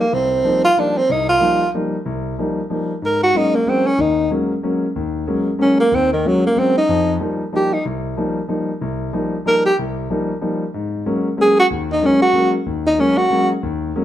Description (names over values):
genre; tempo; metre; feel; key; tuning
jazz; 187 BPM; 3/4; swing 61% on 8ths; unclear; A4 = 439 Hz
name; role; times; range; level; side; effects
breathy tenor saxophone; melody; 0.0-13.5 s; Eb3 to Bb4; -15 LUFS; right 1 dB; none
warm concert grand piano; accompaniment; 0.1-14.0 s; C2 to Eb4; -20 LUFS; left 2 dB; none
room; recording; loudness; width
moderate large studio reverb, RT60 0.9 s; dark, warm production, lossy compression artefacts; -15 LUFS; side -12 dB against mid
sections
0.0-14.0 A section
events
tenor saxophone solo 0.0-14.0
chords
0.0 F9sus4; 3.0 Ab9sus4; 6.9 F9sus4; 10.7 Ab9sus4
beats
| 0.11 0.44 0.76 | 1.08 1.40 1.73 | 2.05 2.37 2.69 | 3.02 3.34 3.66 | 3.98 4.30 4.63 | 4.95 5.27 5.59 | 5.91 6.24 6.56 | 6.88 7.20 7.52 | 7.84 8.16 8.49 | 8.81 9.13 9.45 | 9.77 10.09 10.41 | 10.73 11.06 11.38 | 11.70 12.02 12.34 | 12.66 12.98 13.30 | 13.62 13.94